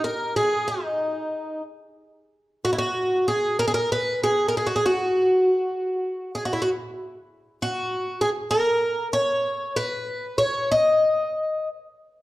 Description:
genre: fado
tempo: 97 BPM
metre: 4/4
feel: uneven beats, rubato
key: unclear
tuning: A4 = 440 Hz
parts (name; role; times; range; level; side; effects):
- picked twelve-string acoustic guitar; solo; 0.0-11.7 s; D#4 to D#5; -21 LUFS; equal; none
room: wet recital hall reverb, RT60 1.3 s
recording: dark, warm production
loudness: -21 LUFS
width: side -16 dB against mid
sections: 0.0-2.3 A section; 2.3-12.2 B section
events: none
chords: none

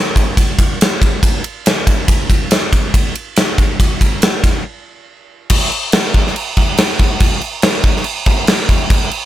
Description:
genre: rock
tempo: 140 BPM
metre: 4/4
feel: straight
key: none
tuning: none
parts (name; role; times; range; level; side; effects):
- gated 80s drum kit; drums; 0.2-9.2 s; crash cymbal, kick drum, ride cymbal, snare drum; -12 LUFS; equal; none
room: little or no reverb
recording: none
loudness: -12 LUFS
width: side -13 dB against mid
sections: 0.0-5.5 A section; 5.5-9.3 B section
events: break 4.7-5.5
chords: none

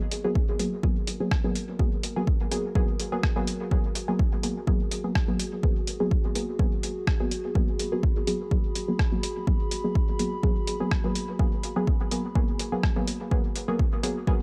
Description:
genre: dub techno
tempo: 125 BPM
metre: 4/4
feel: swing 53% on 16ths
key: G# minor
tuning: A4 = 440 Hz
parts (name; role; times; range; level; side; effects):
- dark analog pad; sustained chords; 0.0-14.4 s; F#4 to B5; -39 LUFS; equal; chorus, sidechain pumping
- lo-fi sampler-style drum kit; drums; 0.1-14.1 s; hi-hat, rim click; -35 LUFS; equal; none
- filtered dub chord stab; stabs; 0.2-14.4 s; F#3 to G#4; -32 LUFS; equal; chorus, phaser, sidechain pumping, dub echo
- electronic kick drum; drums; 0.4-14.4 s; none; -28 LUFS; equal; overdrive
room: digital ambience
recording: dry, gritty hardware recording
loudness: -26 LUFS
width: mono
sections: 0.0-14.4 A section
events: none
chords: 0.0 G#m9

